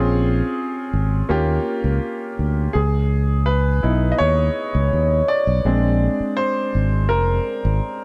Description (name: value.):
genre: lush 1970s-style soul.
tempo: 83 BPM.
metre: 4/4.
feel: straight.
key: unclear.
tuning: A4 = 441 Hz.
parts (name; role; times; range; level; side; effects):
clear baby grand piano; accompaniment; 0.0-8.0 s; G#3 to D#5; -23 LUFS; equal; none.
fingered electric bass; bass; 0.0-7.8 s; E#1 to D#2; -21 LUFS; equal; none.
room: little or no reverb.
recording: dark, warm production.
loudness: -20 LUFS.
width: mono.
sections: 0.0-2.8 A section; 2.8-8.0 B section.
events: grand piano solo 2.8-8.0.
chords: 0.0 A#m7; 1.3 D#7; 2.8 C#m9; 5.7 A#9.